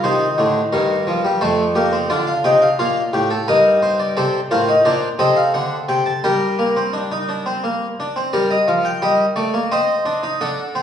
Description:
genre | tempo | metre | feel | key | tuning
classical, baroque-style 4-part fugue for harpsichord | 87 BPM | 3/4 | straight | C minor, G minor from 4.2 s | A4 = 440 Hz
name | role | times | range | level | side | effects
harpsichord | solo | 0.0-10.8 s | F2 to A5 | -15 LUFS | left 1 dB | none
room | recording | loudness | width
wet recital hall reverb, RT60 1.7 s | worn, warbling old tape, cassette tape, warbly pitch drift, studio reverb | -15 LUFS | side -9 dB against mid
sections
0.0-8.3 A section; 8.3-10.8 B section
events
none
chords
0.0 Cm; 1.4 F; 2.1 Bb; 3.5 Eb/G; 4.2 Adim; 5.5 D7; 6.2 Gm; 9.7 Cm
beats
| 0.05 0.74 1.43 | 2.11 2.80 3.49 | 4.17 4.86 5.55 | 6.24 6.94 7.64 | 8.34 9.03 9.71 | 10.40

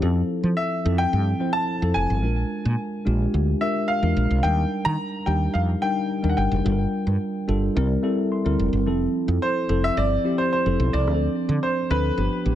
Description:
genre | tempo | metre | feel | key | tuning
polished 1980s jazz-funk pop | 109 BPM | 4/4 | straight | unclear | A4 = 440 Hz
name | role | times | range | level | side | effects
tine electric piano | accompaniment | 0.0-12.6 s | F3 to C6 | -24 LUFS | left 1 dB | overdrive, wide subtle chorus
woody fretless electric bass | bass | 0.0-12.6 s | F1 to F3 | -22 LUFS | equal | none
clear grand piano | melody | 0.6-12.6 s | B4 to Bb5 | -26 LUFS | equal | ping-pong delay
room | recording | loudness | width
light reverb, small room ambience | none | -20 LUFS | side -11 dB against mid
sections
0.0-12.6 A section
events
tine electric piano fill 7.8-8.9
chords
0.0 Fmaj7; 2.2 Bb7; 4.4 Ebmaj7; 6.7 Gm7; 7.8 C7; 8.9 Fmaj7; 11.1 Dm7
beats
| 0.02 0.57 1.13 1.68 | 2.23 2.79 3.34 3.89 | 4.44 5.00 5.55 6.10 | 6.65 7.21 7.76 8.31 | 8.86 9.42 9.97 10.52 | 11.07 11.63 12.18

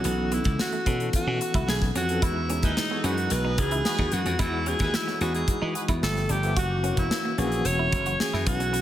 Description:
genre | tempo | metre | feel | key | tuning
polished 1980s jazz-funk pop | 110 BPM | 4/4 | straight | E major | A4 = 437 Hz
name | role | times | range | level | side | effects
bright alto saxophone | melody | 0.0-8.8 s | D#4 to C#5 | -28 LUFS | right 1 dB | analog delay
overdriven tine electric piano | accompaniment | 0.0-8.8 s | E3 to A4 | -32 LUFS | left 2 dB | fast tremolo, lush chorus
semi-hollow electric guitar | riff | 0.0-8.8 s | A3 to F#4 | -36 LUFS | right 4 dB | wide subtle chorus
slap bass | bass | 0.0-8.8 s | E1 to E3 | -28 LUFS | equal | none
modern studio drum kit | drums | 0.0-8.8 s | hi-hat, kick drum, snare drum | -29 LUFS | equal | none
clear horn section | second line | 2.6-5.8 s | F#4 to E5 | -36 LUFS | equal | analog delay
room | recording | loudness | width
moderate plate reverb, RT60 2.0 s, small room ambience | dreamy mix soaked in reverb | -23 LUFS | side -12 dB against mid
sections
0.0-8.8 A section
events
none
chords
0.0 B9sus4; 2.2 Emaj9; 6.0 G9; 6.6 F#7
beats
| 0.05 0.59 1.13 1.68 | 2.22 2.76 3.31 3.85 | 4.39 4.94 5.48 6.02 | 6.57 7.11 7.65 8.20 | 8.74

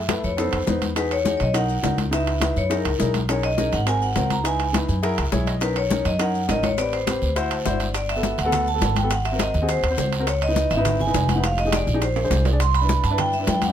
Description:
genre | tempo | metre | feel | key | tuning
Afro-Cuban jazz | 206 BPM | 4/4 | straight | unclear | A4 = 439 Hz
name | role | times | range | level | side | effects
vibraphone with medium hard mallets | melody | 0.0-13.7 s | A#4 to C6 | -24 LUFS | equal | none
upright bass | bass | 0.0-13.7 s | E#1 to G2 | -24 LUFS | equal | none
warm baby grand piano | accompaniment | 0.1-13.7 s | A3 to A5 | -27 LUFS | left 2 dB | none
bongos | percussion | 0.1-13.6 s | none | -34 LUFS | left 10 dB | none
congas | percussion | 0.1-13.7 s | none | -29 LUFS | left 4 dB | none
guiro | percussion | 0.1-13.7 s | none | -38 LUFS | right 5 dB | none
maracas | percussion | 0.1-13.7 s | none | -39 LUFS | left 6 dB | none
timbales | percussion | 0.1-13.7 s | none | -30 LUFS | right 6 dB | none
room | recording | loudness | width
light reverb | close, detailed microphones | -19 LUFS | side -10 dB against mid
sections
0.0-7.9 A section; 7.9-13.7 B section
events
grand piano fill 4.7-5.6, 7.4-7.9; drum fill 12.2-12.6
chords
0.4 F7#11; 1.0 Emaj9; 2.1 C#m7; 2.7 F#13; 3.3 Bmaj13; 3.9 G#7; 4.5 C#m9; 5.0 F#9; 5.6 Bmaj9; 6.8 Am7; 7.4 D7; 7.9 Gmaj7; 9.1 G#7; 10.3 C#m7; 11.4 Fm7; 12.0 A#9; 12.6 Cmaj7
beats
0.09 0.38 0.67 | 0.96 1.25 1.55 1.84 | 2.13 2.42 2.71 3.00 | 3.29 3.58 3.87 4.16 | 4.45 4.74 5.03 5.33 | 5.62 5.91 6.20 6.49 | 6.78 7.07 7.36 7.65 | 7.94 8.23 8.53 8.82 | 9.11 9.40 9.69 9.98 | 10.27 10.56 10.85 11.14 | 11.44 11.73 12.02 12.31 | 12.60 12.89 13.18 13.47

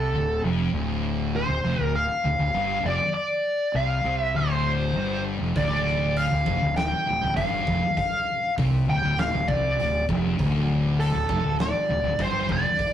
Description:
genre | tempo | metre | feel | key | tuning
stoner and doom metal | 100 BPM | 4/4 | straight | D minor | A4 = 440 Hz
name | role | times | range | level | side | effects
fuzz lead guitar | melody | 0.0-12.9 s | A4 to G5 | -25 LUFS | equal | wah, distortion
thick fuzz guitar | riff | 0.0-12.6 s | D2 to C3 | -28 LUFS | left 4 dB | distortion
thick fuzz guitar | riff | 0.0-12.6 s | D2 to C3 | -30 LUFS | right 5 dB | distortion
fuzz fingered electric bass | bass | 0.0-12.6 s | D1 to C2 | -28 LUFS | equal | overdrive
big rock drum kit | drums | 5.6-12.9 s | hi-hat, kick drum, snare drum | -30 LUFS | equal | none
room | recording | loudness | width
moderate stone room reverb, RT60 1.4 s | rough rehearsal-room recording, tube saturation | -22 LUFS | side -10 dB against mid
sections
0.0-12.9 A section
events
none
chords
0.0 Dm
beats
0.14 | 0.74 1.34 1.94 2.54 | 3.15 3.75 4.35 4.96 | 5.56 6.16 6.77 7.37 | 7.97 8.58 9.18 9.78 | 10.39 10.99 11.59 12.19 | 12.79

